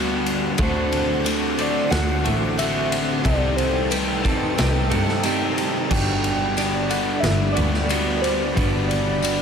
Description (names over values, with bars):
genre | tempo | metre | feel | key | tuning
rock, shoegaze and dream pop | 90 BPM | 4/4 | straight | G major | A4 = 440 Hz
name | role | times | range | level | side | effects
soft struck synth lead | melody | 0.0-9.4 s | B4 to G5 | -27 LUFS | left 1 dB | chorus, phaser, digital delay
soft additive organ-like pad | sustained chords | 0.0-9.4 s | Eb4 to D6 | -31 LUFS | right 1 dB | ensemble chorus, built-in reverb
picked twelve-string acoustic guitar | arpeggios | 0.0-9.4 s | D4 to F#5 | -32 LUFS | right 7 dB | analog chorus, digital delay
direct-recorded clean electric guitar | riff | 0.0-9.4 s | C3 to G4 | -28 LUFS | right 11 dB | reverse reverb
overdriven semi-hollow guitar | riff | 0.0-9.4 s | G2 to F#4 | -27 LUFS | left 12 dB | lush chorus
overdriven semi-hollow guitar | riff | 0.0-9.4 s | G2 to D4 | -28 LUFS | equal | spring reverb
warm double bass | bass | 0.0-9.4 s | G1 to G2 | -26 LUFS | equal | none
raw garage drum kit | drums | 0.3-9.4 s | crash cymbal, kick drum, ride cymbal, snare drum | -25 LUFS | equal | none
tambourine | percussion | 1.3-9.4 s | none | -36 LUFS | left 13 dB | none
room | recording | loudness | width
light reverb, studio reverb | none | -19 LUFS | side -7 dB against mid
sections
0.0-9.4 A section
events
none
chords
0.0 Gmaj7; 0.6 D7; 3.3 Cm6; 5.9 Gmaj7